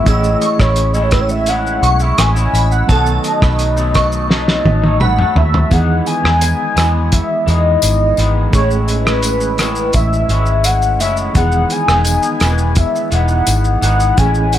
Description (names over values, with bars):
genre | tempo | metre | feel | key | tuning
indie pop, bedroom pop | 85 BPM | 4/4 | straight | E major | A4 = 438 Hz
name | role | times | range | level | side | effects
warm velvety synth lead | melody | 0.0-14.6 s | B4 to G#5 | -18 LUFS | left 2 dB | lush chorus, tape echo
electric guitar through a small old amp | accompaniment | 0.0-14.6 s | A2 to E4 | -21 LUFS | left 2 dB | analog chorus, vibrato effect
reed electric piano | accompaniment | 0.0-14.6 s | D#3 to A4 | -24 LUFS | right 5 dB | fast tremolo
glassy synth bell | second line | 0.1-5.5 s | A5 to E6 | -22 LUFS | right 6 dB | ensemble chorus, tape echo
vintage muted fingered electric bass | bass | 0.1-14.6 s | E1 to E2 | -15 LUFS | equal | none
cloth-damped thuddy drum kit | drums | 0.1-14.6 s | hi-hat, kick drum, rim click, shaker, snare drum, toms | -16 LUFS | equal | none
tambourine | percussion | 5.7-14.6 s | none | -27 LUFS | left 7 dB | none
room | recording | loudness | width
small room ambience | none | -11 LUFS | side -11 dB against mid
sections
0.0-5.7 A section; 5.7-14.6 B section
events
drum fill 4.3-5.7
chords
0.1 Amaj7; 2.9 B7; 5.7 Emaj7; 8.5 Amaj7; 11.4 Emaj7